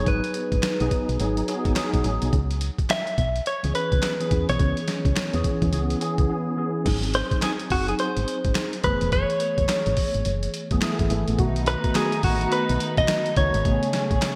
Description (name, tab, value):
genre	R&B, new jack swing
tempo	106 BPM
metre	4/4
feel	swing 62% on 16ths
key	C# minor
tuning	A4 = 441 Hz
part	direct-recorded clean electric guitar	melody	0.0-14.4 s	F#4 to E5	-28 LUFS	equal	lush chorus
part	mellow tine electric piano	accompaniment	0.0-14.4 s	C#3 to A4	-29 LUFS	equal	ensemble chorus
part	solid FM bass	bass	0.0-14.2 s	E1 to E2	-28 LUFS	equal	none
part	boom bap sampler-style drum kit	drums	0.1-14.4 s	crash cymbal, handclaps, hi-hat, kick drum, snare drum	-28 LUFS	equal	gated reverb
part	dark studio string section	sustained chords	11.4-14.4 s	A3 to G#4	-34 LUFS	equal	none
room	moderate lush hall reverb, RT60 1.8 s, digital ambience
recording	bright 1980s-style digital production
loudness	-24 LUFS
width	mono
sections	0.0-6.9 A section; 6.9-14.4 B section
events	none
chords	0.0 G#m7; 2.3 C#m7; 6.9 G#7; 8.8 F#m11; 11.4 B7; 13.6 Amaj9